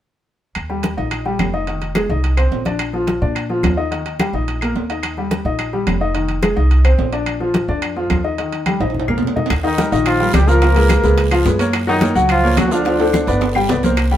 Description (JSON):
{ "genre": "Afro-Cuban jazz", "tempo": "215 BPM", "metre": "4/4", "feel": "straight", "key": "Eb major", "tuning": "A4 = 442 Hz", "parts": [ { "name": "upright bass", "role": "bass", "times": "0.6-14.2 s", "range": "F1 to Bb2", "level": "-19 LUFS", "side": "equal", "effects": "none" }, { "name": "claves", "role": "percussion", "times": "0.6-14.1 s", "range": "none", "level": "-30 LUFS", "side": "left 4 dB", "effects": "none" }, { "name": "congas", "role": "percussion", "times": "0.6-14.2 s", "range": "none", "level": "-23 LUFS", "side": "left 1 dB", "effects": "none" }, { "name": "timbales", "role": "percussion", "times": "0.6-14.1 s", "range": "none", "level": "-26 LUFS", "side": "right 5 dB", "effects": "none" }, { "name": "clear upright piano", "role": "accompaniment", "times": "0.7-14.2 s", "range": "Eb3 to G5", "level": "-19 LUFS", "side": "left 2 dB", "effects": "none" }, { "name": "bongos", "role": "percussion", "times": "9.5-14.1 s", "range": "none", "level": "-27 LUFS", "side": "left 4 dB", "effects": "none" }, { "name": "guiro", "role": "percussion", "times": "9.5-14.2 s", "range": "none", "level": "-34 LUFS", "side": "right 6 dB", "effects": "none" }, { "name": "bright trombone", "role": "second line", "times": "9.6-13.6 s", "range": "D3 to Bb3", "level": "-24 LUFS", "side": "right 4 dB", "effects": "none" }, { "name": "breathy trumpet", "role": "melody", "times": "9.7-13.6 s", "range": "D4 to Bb4", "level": "-20 LUFS", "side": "left 1 dB", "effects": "none" } ], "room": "light reverb", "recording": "band playing live in one room", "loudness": "-15 LUFS", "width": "side -11 dB against mid", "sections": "0.6-9.5 A section; 9.5-14.2 B section", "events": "drum fill 8.7-9.5, 12.9-14.0", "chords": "0.6 Eb; 1.7 Fm7; 2.8 Bb; 3.9 Eb; 6.2 Fm7; 7.3 Bb; 8.4 Eb; 9.5 Ebadd9; 10.6 Db6; 11.7 Gbmaj7; 12.9 Dm7; 13.4 G" }